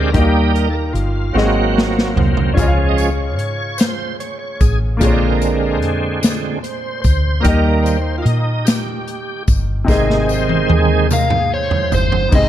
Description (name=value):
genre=slow gospel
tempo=49 BPM (dotted quarters)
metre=6/8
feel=straight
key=Ab major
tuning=A4 = 440 Hz
part: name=clear baby grand piano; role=accompaniment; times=0.0-12.5 s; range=Ab2 to F5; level=-23 LUFS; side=left 4 dB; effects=none
part: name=bright tonewheel organ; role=sustained chords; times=0.0-12.5 s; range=C3 to Eb5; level=-19 LUFS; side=right 3 dB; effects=slow rotary speaker, overdrive, chorus vibrato
part: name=fingered electric bass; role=bass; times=0.0-12.5 s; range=G1 to Bb2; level=-18 LUFS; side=equal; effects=none
part: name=swinging big-band drum kit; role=drums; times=0.1-12.5 s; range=crash cymbal, hi-hat, kick drum, snare drum, toms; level=-18 LUFS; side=equal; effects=none
part: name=tambourine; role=percussion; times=2.6-12.5 s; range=none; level=-31 LUFS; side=left 9 dB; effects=none
part: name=overdriven slide guitar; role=melody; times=11.1-12.5 s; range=C5 to F5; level=-18 LUFS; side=left 2 dB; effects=none
room=light reverb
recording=dark, warm production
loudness=-14 LUFS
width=side -11 dB against mid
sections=0.0-12.3 A section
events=tonewheel organ solo 0.0-12.3; drum fill 1.4-2.6, 9.9-12.3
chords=0.1 Eb; 1.4 Ab7; 2.6 Db; 5.0 Bb7; 7.4 Eb; 9.9 Ab